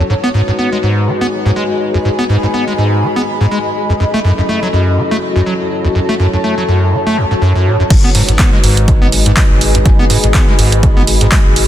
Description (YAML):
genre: acid house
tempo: 123 BPM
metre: 4/4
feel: swing 56% on 16ths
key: G# phrygian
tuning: A4 = 440 Hz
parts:
  - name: dark analog pad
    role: sustained chords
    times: 0.0-11.7 s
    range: F#3 to B4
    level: -20 LUFS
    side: left 1 dB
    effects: chorus, vintage 12-bit sampler grit, sidechain pumping
  - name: acid bass, square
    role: riff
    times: 0.0-11.4 s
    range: E2 to B3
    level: -14 LUFS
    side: equal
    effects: overdrive, lush chorus, sidechain pumping, dub echo
  - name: granular cloud pad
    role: texture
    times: 0.0-11.7 s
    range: F#4 to B5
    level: -18 LUFS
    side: left 1 dB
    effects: built-in reverb, sidechain pumping
  - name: round analog bass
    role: bass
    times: 7.9-11.7 s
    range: G#1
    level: -14 LUFS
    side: equal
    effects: tube saturation, sidechain pumping
  - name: electronic kick drum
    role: drums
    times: 7.9-11.4 s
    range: none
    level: -11 LUFS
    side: equal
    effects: none
  - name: punchy analog drum machine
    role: drums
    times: 7.9-11.7 s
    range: crash cymbal, handclaps, hi-hat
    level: -16 LUFS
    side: right 2 dB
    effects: none
room: light reverb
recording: dense, heavily limited modern master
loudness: -10 LUFS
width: side -12 dB against mid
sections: 0.0-7.9 A section; 7.9-11.7 B section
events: drop 7.9-11.7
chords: 0.1 G#m7; 4.0 F#m7; 7.9 G#m7